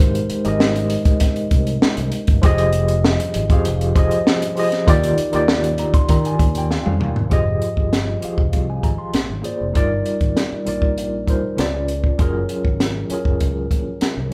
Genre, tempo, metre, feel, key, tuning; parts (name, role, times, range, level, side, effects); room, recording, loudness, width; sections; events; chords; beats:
lush 1970s-style soul; 98 BPM; 4/4; straight; A4 = 440 Hz
tine electric piano; accompaniment; 0.0-14.3 s; Db3 to C6; -23 LUFS; equal; medium tremolo
fingered electric bass; bass; 0.0-14.3 s; F1 to Eb3; -26 LUFS; equal
compact cocktail drum kit; drums; 0.1-14.2 s; hi-hat, kick drum, snare drum, toms; -21 LUFS; equal
moderate large studio reverb, RT60 0.9 s; band playing live in one room; -19 LUFS; mono
0.0-7.3 A section; 7.3-14.3 B section
tine electric piano fill 5.5-7.3; drum fill 6.7-7.3
0.0 Abmaj7; 2.4 Fm7; 4.9 Ebmaj9; 7.3 Fm7; 9.1 Bb7; 9.8 Ebmaj9/G; 11.6 Db7b9; 12.2 Gbmaj7
| 0.00 0.61 1.22 1.83 | 2.44 3.05 3.65 4.26 | 4.87 5.48 6.09 6.70 | 7.31 7.92 8.53 9.14 | 9.75 10.36 10.97 11.58 | 12.19 12.80 13.41 14.02